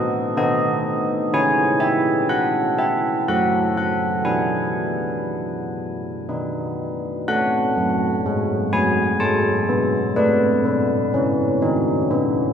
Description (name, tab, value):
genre	classical, tune for church bells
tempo	62 BPM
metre	3/4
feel	straight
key	unclear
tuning	A4 = 440 Hz
part	carillon bells	solo	0.0-12.5 s	F#3 to A5	-18 LUFS	equal	none
room	wet cathedral reverb, RT60 4.7 s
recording	none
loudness	-18 LUFS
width	side -8 dB against mid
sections	0.0-7.3 A section; 7.3-12.5 B section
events	none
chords	0.0 B7; 1.3 C#m; 3.3 F#m; 4.3 E/B; 6.3 B; 7.3 F#m; 10.2 B7/A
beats	0.37 | 1.33 2.29 3.28 | 4.27 5.28 6.29 | 7.29 8.25 9.21 | 10.16 11.13 12.10